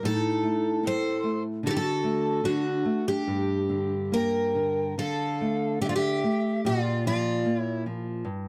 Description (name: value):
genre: fado-style ballad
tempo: 70-76 BPM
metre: 2/4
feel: rubato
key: G harmonic minor, D minor from 5.0 s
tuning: A4 = 440 Hz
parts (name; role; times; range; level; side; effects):
- picked twelve-string acoustic guitar; melody; 0.0-7.8 s; F4 to C5; -30 LUFS; equal; none
- breathy bright pan flute; second line; 0.0-7.8 s; D4 to G5; -35 LUFS; equal; none
- nylon-string guitar; accompaniment; 0.0-8.5 s; G2 to C4; -31 LUFS; equal; none
room: small room ambience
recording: dry, close 1970s-style studio recording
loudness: -27 LUFS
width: mono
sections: 0.0-5.0 A section; 5.0-8.5 B section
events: none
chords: 0.0 Adim; 1.6 D; 3.3 Gm; 5.0 Dmadd9; 6.7 Bb